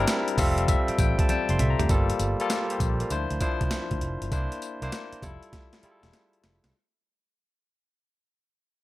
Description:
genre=R&B, new jack swing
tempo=99 BPM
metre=4/4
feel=swing 66% on 16ths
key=unclear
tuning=A4 = 440 Hz
part: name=barky tine electric piano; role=accompaniment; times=0.0-6.8 s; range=F3 to C6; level=-27 LUFS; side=left 2 dB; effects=medium stereo tremolo
part: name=vintage muted fingered electric bass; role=bass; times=0.0-6.7 s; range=E1 to D2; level=-28 LUFS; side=equal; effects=none
part: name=breakbeat sampler-style drum kit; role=drums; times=0.1-6.7 s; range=hi-hat, kick drum, snare drum, tambourine, toms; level=-27 LUFS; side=right 1 dB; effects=none
room=little or no reverb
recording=none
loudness=-23 LUFS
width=side -17 dB against mid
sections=0.0-1.9 A section; 1.9-6.7 B section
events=tine electric piano fill 0.1-1.9; drum fill 1.3-1.9, 5.5-6.7; fade-out 1.9-6.7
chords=0.4 Fmaj9; 1.9 Gm9; 3.1 Dm9; 4.3 C9; 5.2 Fmaj9

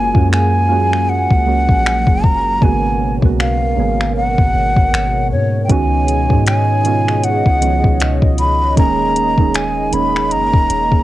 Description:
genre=contemporary R&B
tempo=78 BPM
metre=4/4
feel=swing 58% on 16ths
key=G# dorian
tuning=A4 = 440 Hz
part: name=breathy hollow jazz flute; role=melody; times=0.0-11.0 s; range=C#5 to B5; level=-17 LUFS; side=equal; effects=cassette tape, tape echo
part: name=soft electric-piano-like synth keys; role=accompaniment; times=0.0-11.0 s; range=C#3 to G#4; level=-20 LUFS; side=right 7 dB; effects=chorus, cassette tape
part: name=hollow soft pad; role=sustained chords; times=0.0-11.0 s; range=B2 to G#5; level=-24 LUFS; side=left 2 dB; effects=chorus, cassette tape
part: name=soft 808-style bass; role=bass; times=0.0-11.0 s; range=D#1 to G#2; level=-18 LUFS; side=left 1 dB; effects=none
part: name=smooth R&B drum kit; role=drums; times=0.1-11.0 s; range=finger snaps, hi-hat, kick drum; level=-15 LUFS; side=left 1 dB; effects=none
room=little or no reverb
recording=home recording on cassette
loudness=-12 LUFS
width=side -15 dB against mid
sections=0.0-11.0 A section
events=break 0.0-2.6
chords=0.0 F#maj9; 2.6 G#m11; 5.7 C#9sus4; 8.8 D#7sus4

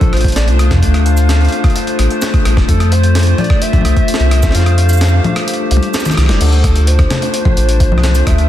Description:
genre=IDM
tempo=129 BPM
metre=4/4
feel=straight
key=D minor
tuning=A4 = 440 Hz
part: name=warbly nostalgic lead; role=melody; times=0.0-8.5 s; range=A4 to F5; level=-23 LUFS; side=equal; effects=chorus, tape echo
part: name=warbly tape-like pad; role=sustained chords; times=0.0-8.5 s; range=A3 to C5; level=-20 LUFS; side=left 2 dB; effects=chorus, built-in reverb
part: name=vibraphone with medium mallets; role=arpeggios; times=0.0-8.5 s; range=A3 to D5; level=-22 LUFS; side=left 4 dB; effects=ping-pong delay
part: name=electronic kick drum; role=drums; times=0.0-8.4 s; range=none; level=-13 LUFS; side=equal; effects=overdrive
part: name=jungle sampler-style drum kit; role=drums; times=0.0-8.5 s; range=congas, crash cymbal, hi-hat, rim click, shaker, snare drum, toms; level=-18 LUFS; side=left 1 dB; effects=overdrive
part: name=warm sub bass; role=bass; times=0.1-8.5 s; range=D1 to F2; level=-11 LUFS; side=equal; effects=none
room=little or no reverb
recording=dense, heavily limited modern master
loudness=-10 LUFS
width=side -12 dB against mid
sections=0.0-6.4 A section; 6.4-8.5 A section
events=kick drops out 4.5-6.4; drum fill 5.7-6.4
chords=0.0 Dm7; 2.7 Fmaj7; 6.4 Dm7

